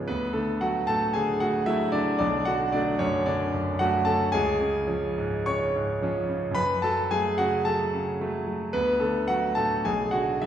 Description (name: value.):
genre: classical, romantic character piece for solo piano.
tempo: 111 BPM.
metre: 4/4.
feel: rubato.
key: F# minor.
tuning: A4 = 441 Hz.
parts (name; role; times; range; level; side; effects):
clear concert grand piano; solo; 0.0-10.5 s; B1 to C#6; -23 LUFS; equal; none.
room: wet recital hall reverb, RT60 1.3 s.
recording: recorded in a church or concert hall.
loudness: -23 LUFS.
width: side -10 dB against mid.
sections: 0.0-10.5 A section.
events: none.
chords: 0.1 D; 2.2 Bm7; 4.3 C#; 6.6 F#m; 8.7 D; 9.9 G#m7b5/B.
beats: | 0.06 0.60 1.13 1.66 | 2.19 2.73 3.27 3.80 | 4.34 4.88 5.47 6.03 | 6.57 7.12 7.66 8.20 | 8.74 9.30 9.87 10.45.